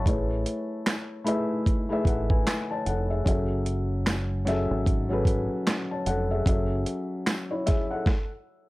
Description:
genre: lo-fi hip hop.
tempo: 75 BPM.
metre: 4/4.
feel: swing 61% on 16ths.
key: F# minor.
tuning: A4 = 439 Hz.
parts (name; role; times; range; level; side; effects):
felt-muted upright piano; accompaniment; 0.0-8.3 s; F#3 to A5; -28 LUFS; left 1 dB; low-pass filter.
deep dub fingered electric bass; bass; 0.0-6.8 s; E#1 to A1; -29 LUFS; equal; none.
dusty soul sampler-style drum kit; drums; 0.1-8.3 s; handclaps, hi-hat, kick drum, snare drum; -25 LUFS; equal; overdrive.
tambourine; percussion; 0.9-7.5 s; none; -43 LUFS; right 6 dB; none.
room: light reverb.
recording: none.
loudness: -24 LUFS.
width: side -20 dB against mid.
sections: 0.0-8.7 A section.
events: none.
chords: 0.1 Amaj7; 6.5 F#m7.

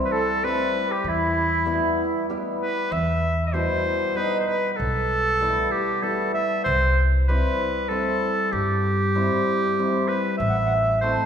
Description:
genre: klezmer.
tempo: 96 BPM.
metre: 3/4.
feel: straight.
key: E minor.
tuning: A4 = 440 Hz.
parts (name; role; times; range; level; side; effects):
cimbalom; accompaniment; 0.0-11.3 s; B2 to E4; -26 LUFS; left 1 dB; none.
bright clarinet; melody; 0.1-11.3 s; E4 to E5; -23 LUFS; right 1 dB; none.
mellow accordion; second line; 0.1-2.3, 10.4-11.3 s; E4 to F#5; -27 LUFS; equal; none.
upright bass; bass; 1.0-11.2 s; A1 to G2; -26 LUFS; equal; none.
room: wet scoring stage reverb, RT60 1.9 s.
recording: recorded in a church or concert hall.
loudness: -20 LUFS.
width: side -8 dB against mid.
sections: 0.0-2.9 A section; 2.9-11.3 B section.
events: none.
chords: 0.0 C; 1.0 Em; 6.7 C; 10.4 Am.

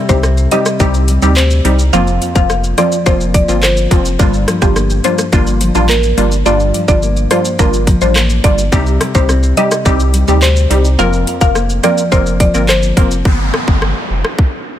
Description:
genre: dancehall.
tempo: 106 BPM.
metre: 4/4.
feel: straight.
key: unclear.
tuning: A4 = 443 Hz.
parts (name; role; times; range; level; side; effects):
wavetable chord stab; accompaniment; 0.0-13.2 s; F3 to Bb4; -17 LUFS; equal; phaser, sidechain pumping.
nylon-string guitar; arpeggios; 0.0-13.8 s; F2 to Eb4; -19 LUFS; left 3 dB; none.
mallet-like synth pluck; melody; 0.1-13.1 s; G4 to F5; -18 LUFS; equal; chorus, digital delay.
round analog bass; bass; 0.1-14.2 s; F1 to D2; -14 LUFS; equal; none.
island pop drum kit; drums; 0.1-14.5 s; handclaps, hi-hat, kick drum, rim click, shaker; -15 LUFS; equal; overdrive.
downlifter; sound effects; 13.3-14.8 s; none; -19 LUFS; equal; none.
room: little or no reverb.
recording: none.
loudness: -10 LUFS.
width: side -11 dB against mid.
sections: 0.0-13.3 A section; 13.3-14.8 B section.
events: break 13.3-14.8.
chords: 0.0 Cm; 1.9 Fsus4; 4.2 Gm7; 8.7 Cm; 11.0 Fsus4; 13.3 Fsus2.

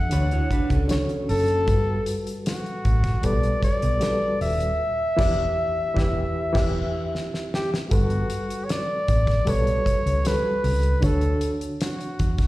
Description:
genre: lush 1970s-style soul.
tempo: 77 BPM.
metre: 4/4.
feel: straight.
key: unclear.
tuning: A4 = 440 Hz.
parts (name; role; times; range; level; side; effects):
clear flugelhorn; melody; 0.0-12.5 s; F#4 to F#5; -26 LUFS; equal; tube saturation, slapback echo.
reed electric piano; accompaniment; 0.0-12.5 s; D3 to E5; -28 LUFS; left 1 dB; tremolo, slapback echo.
hollow-body short-scale fingered electric bass; bass; 0.0-12.5 s; D#1 to E2; -22 LUFS; equal; none.
electric guitar through a small old amp; riff; 0.1-1.6 s; C#4 to C#5; -31 LUFS; right 4 dB; slapback echo.
damped 70s drum kit; drums; 0.1-12.5 s; crash cymbal, hi-hat, kick drum, snare drum; -27 LUFS; equal; none.
room: light reverb.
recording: live gig heard through the venue's PA, recital hall reverb.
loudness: -21 LUFS.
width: side -17 dB against mid.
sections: 0.0-7.9 A section; 7.9-12.5 A section.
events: band accent 4.8-7.9; drum fill 7.1-7.9.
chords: 0.0 Dmaj7; 1.7 Gmaj9; 4.8 Em7; 7.9 Gmaj9; 11.0 Dmaj7.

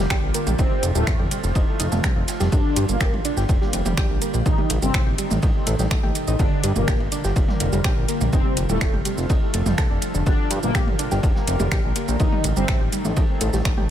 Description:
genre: melodic techno.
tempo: 124 BPM.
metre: 4/4.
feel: straight.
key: G minor.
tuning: A4 = 440 Hz.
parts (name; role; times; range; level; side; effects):
evolving wavetable pad; sustained chords; 0.0-13.9 s; C3 to Bb4; -29 LUFS; equal; chorus, built-in reverb, sidechain pumping.
soft round pluck; arpeggios; 0.0-13.9 s; D3 to A5; -29 LUFS; right 1 dB; chorus, vintage 12-bit sampler grit, sidechain pumping, dub echo.
fat analog bass; bass; 0.0-13.9 s; Eb1 to G2; -24 LUFS; equal; tube saturation, sidechain pumping.
deep house drum kit; drums; 0.1-13.9 s; finger snaps, hi-hat, shaker, toms; -28 LUFS; right 2 dB; overdrive, sidechain pumping on hats, sidechain pumping on perc, sidechain pumping on toms.
electronic kick drum; drums; 0.1-13.8 s; none; -21 LUFS; equal; none.
vintage drum kit; drums; 0.1-13.8 s; ride cymbal, snare drum; -39 LUFS; equal; sidechain pumping on cymbals, high-pass filter on cymbals, high-pass filter on snare, high-pass filter on room, dub echo.
mellow synth brass; melody; 0.6-12.8 s; A2 to Eb4; -29 LUFS; left 1 dB; chorus, phaser, sidechain pumping, analog delay.
room: light reverb.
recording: echo-heavy mix.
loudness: -18 LUFS.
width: side -10 dB against mid.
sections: 0.0-13.9 A section.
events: none.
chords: 0.0 Gm7; 0.6 F; 2.5 Gm7; 4.5 Adim; 6.4 Gm7; 8.3 F; 10.3 Gm7; 12.2 Adim.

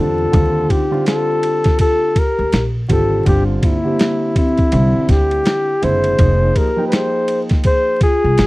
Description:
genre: hip hop, jazz-hop.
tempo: 82 BPM.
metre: 4/4.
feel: swing 60% on 16ths.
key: unclear.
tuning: A4 = 440 Hz.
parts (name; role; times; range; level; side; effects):
breathy flugelhorn; melody; 0.0-8.5 s; E4 to C5; -17 LUFS; left 1 dB; none.
vibraphone with soft mallets; second line; 0.0-8.5 s; Bb3 to Ab4; -23 LUFS; left 4 dB; none.
dark grand piano; accompaniment; 0.0-8.0 s; D3 to G5; -22 LUFS; right 3 dB; none.
upright bass; bass; 0.0-8.5 s; F1 to E2; -17 LUFS; equal; none.
boom bap sampler-style drum kit; drums; 0.3-8.5 s; hi-hat, kick drum, ride cymbal, snare drum; -16 LUFS; equal; none.
room: small room ambience.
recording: dry, close 1970s-style studio recording, vinyl crackle.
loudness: -13 LUFS.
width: side -19 dB against mid.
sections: 0.0-8.5 A section.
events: none.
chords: 0.3 Ebmaj9 (rootless); 3.3 Gm7; 4.7 C; 6.2 Fm9.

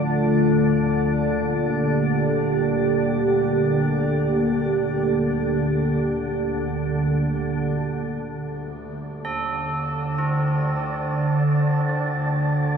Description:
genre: dark ambient drone.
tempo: free time.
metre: none.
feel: none.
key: D in sen.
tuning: A4 = 439 Hz.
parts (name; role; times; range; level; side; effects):
deep dark ambient pad; sustained chords; 0.0-8.3 s; A3 to D5; -23 LUFS; right 1 dB; chorus, built-in reverb, shimmer reverb.
organ-like drone; drone; 0.0-12.8 s; D2 to D3; -23 LUFS; right 1 dB; ensemble chorus, built-in reverb.
wind-like tuned noise texture; texture; 9.1-12.8 s; D5; -32 LUFS; right 1 dB; built-in reverb, lush chorus, shimmer reverb.
mellow bass clarinet; melody; 8.4-12.8 s; D2 to Eb2; -40 LUFS; equal; shimmer reverb, analog delay.
tubular bells; arpeggios; 9.2-12.8 s; C4 to A4; -28 LUFS; right 1 dB; shimmer reverb, analog delay.
room: wet huge ambient reverb, RT60 7.8 s.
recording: dreamy mix soaked in reverb.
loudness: -20 LUFS.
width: side -6 dB against mid.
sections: 0.0-8.3 A section; 8.3-12.8 B section.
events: fade-in on bass clarinet 8.3-12.8.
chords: 0.0 Dm; 0.8 Gm; 8.3 D5.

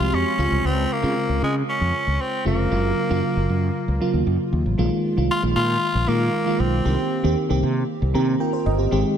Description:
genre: 1980s-style pop.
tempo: 116 BPM.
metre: 4/4.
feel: straight.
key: unclear.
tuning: A4 = 440 Hz.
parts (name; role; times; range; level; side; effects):
raspy tenor saxophone; melody; 0.0-7.4 s; Ab3 to F4; -25 LUFS; left 2 dB; tape echo.
FM electric piano with soft pad layer; accompaniment; 0.0-9.2 s; Db3 to Bb5; -23 LUFS; right 2 dB; chorus.
fretless electric bass; bass; 0.0-9.0 s; F1 to Db3; -22 LUFS; equal; none.
room: light reverb.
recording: none.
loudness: -19 LUFS.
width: side -8 dB against mid.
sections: 0.0-4.8 A section; 4.8-9.2 B section.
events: FM electric piano fill 7.9-8.9.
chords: 0.4 Dbmaj7; 2.7 Gbmaj7; 4.8 Bb7sus4; 6.9 Cm7.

